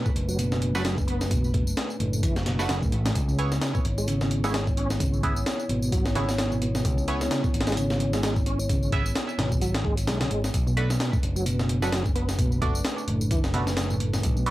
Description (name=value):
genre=breakbeat, breaks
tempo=130 BPM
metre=4/4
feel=swing 57% on 16ths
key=unclear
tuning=A4 = 439 Hz
part: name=dark analog pad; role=sustained chords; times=0.0-14.5 s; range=A3 to C#5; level=-33 LUFS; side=equal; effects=chorus, sidechain pumping
part: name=tonewheel organ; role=riff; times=0.0-14.5 s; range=A2 to C#4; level=-29 LUFS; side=equal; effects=chorus vibrato, fast rotary speaker, digital delay
part: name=breakbeat sampler-style drum kit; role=drums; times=0.1-14.5 s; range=hi-hat, kick drum, snare drum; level=-27 LUFS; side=equal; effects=none
part: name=tambourine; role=drums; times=0.1-14.4 s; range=none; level=-39 LUFS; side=left 1 dB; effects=none
part: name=picked electric bass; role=bass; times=0.2-14.5 s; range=F#1 to C#2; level=-28 LUFS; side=equal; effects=tube saturation
part: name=band-passed chord stab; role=stabs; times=0.7-14.5 s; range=A3 to E5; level=-32 LUFS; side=right 3 dB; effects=phaser, cassette tape, digital delay
room=light reverb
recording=vinyl crackle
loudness=-23 LUFS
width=side -16 dB against mid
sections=0.0-14.5 A section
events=none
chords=0.0 Bm7; 3.2 C#m7; 10.5 Bm7